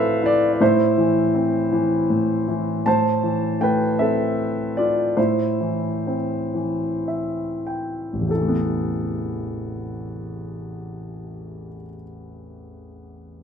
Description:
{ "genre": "classical, lyrical solo piano", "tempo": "30-55 BPM (dotted quarters)", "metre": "6/8", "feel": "rubato", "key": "A minor", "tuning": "A4 = 440 Hz", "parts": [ { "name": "clear concert grand piano", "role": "solo", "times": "0.0-13.4 s", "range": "A1 to A5", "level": "-20 LUFS", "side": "equal", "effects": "none" } ], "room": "wet recital hall reverb, RT60 1.4 s", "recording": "minimal, uncompressed stereo recording", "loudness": "-19 LUFS", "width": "side -7 dB against mid", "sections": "0.0-2.9 A section; 2.9-8.3 B section; 8.3-12.2 C section", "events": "slowing down 2.9-8.3; grand piano fill 6.5-8.3", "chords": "0.0 Amadd9; 0.6 Am; 2.9 Amadd9; 5.2 Am; 8.3 Amadd9" }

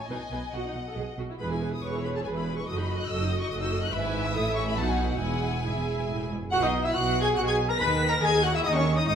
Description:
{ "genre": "quick classical-period movement for symphony orchestra", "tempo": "140 BPM", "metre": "3/4", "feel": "straight", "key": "E major", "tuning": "A4 = 441 Hz", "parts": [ { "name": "rich chamber violin section", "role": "melody", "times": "0.0-9.2 s", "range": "E5 to B6", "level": "-33 LUFS", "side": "left 3 dB", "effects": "none" }, { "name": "rich chamber violin section", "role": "second line", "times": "0.0-9.1 s", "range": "B4 to B5", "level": "-34 LUFS", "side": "left 3 dB", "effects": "none" }, { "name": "rich chamber viola section", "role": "accompaniment", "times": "0.1-9.1 s", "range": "C#4 to B4", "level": "-32 LUFS", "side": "right 2 dB", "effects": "none" }, { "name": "bright chamber cello section", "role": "bass", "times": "0.1-9.2 s", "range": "E2 to D#3", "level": "-32 LUFS", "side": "right 2 dB", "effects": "none" }, { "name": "rich chamber double bass section", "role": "bass", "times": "0.1-9.2 s", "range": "E1 to D#2", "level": "-32 LUFS", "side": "right 2 dB", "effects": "none" }, { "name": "mellow cor anglais", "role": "second line", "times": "6.5-9.2 s", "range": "C#4 to B4", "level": "-32 LUFS", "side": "equal", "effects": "none" }, { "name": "mellow hollow silver concert flute", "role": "second line", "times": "6.5-9.1 s", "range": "C#5 to B5", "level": "-34 LUFS", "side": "left 3 dB", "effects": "none" }, { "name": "mellow French horn section", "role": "sustained chords", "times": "6.5-9.1 s", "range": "C#4 to B4", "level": "-32 LUFS", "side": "left 4 dB", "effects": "none" }, { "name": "mellow trumpet section", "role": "stabs", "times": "6.5-9.1 s", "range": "C#5 to B5", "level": "-32 LUFS", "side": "equal", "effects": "none" } ], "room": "wet recital hall reverb, RT60 1.4 s", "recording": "minimal, uncompressed stereo recording", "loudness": "-25 LUFS", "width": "side -8 dB against mid", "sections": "0.0-6.5 A section; 6.5-9.2 B section", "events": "none", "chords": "0.1 B; 1.4 E; 2.7 D#dim/F#; 3.9 E/G#; 4.3 A5; 4.8 B; 5.2 E; 6.5 Emaj9#11/B; 7.8 Bmaj13/D#" }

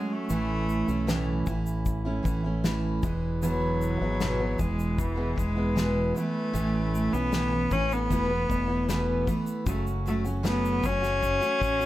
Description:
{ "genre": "acoustic pop", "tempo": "77 BPM", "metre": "4/4", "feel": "straight", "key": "A major", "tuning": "A4 = 440 Hz", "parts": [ { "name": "bright cello", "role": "melody", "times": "0.0-11.9 s", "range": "E3 to C#4", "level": "-29 LUFS", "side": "left 1 dB", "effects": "none" }, { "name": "picked steel-string acoustic guitar", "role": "accompaniment", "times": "0.0-11.9 s", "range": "E2 to F#4", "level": "-28 LUFS", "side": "right 2 dB", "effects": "none" }, { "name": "fingered electric bass with an envelope filter", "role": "bass", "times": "0.3-11.9 s", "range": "E1 to B1", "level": "-31 LUFS", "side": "equal", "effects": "none" }, { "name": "unplugged drum kit", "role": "drums", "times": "0.3-11.9 s", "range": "kick drum, shaker, snare drum", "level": "-32 LUFS", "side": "left 2 dB", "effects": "none" } ], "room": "light reverb", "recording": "none", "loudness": "-24 LUFS", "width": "side -15 dB against mid", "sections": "0.0-9.7 A section; 9.7-11.9 B section", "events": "none", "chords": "0.3 A; 3.0 E; 6.5 A; 8.1 Esus4; 9.7 F#m" }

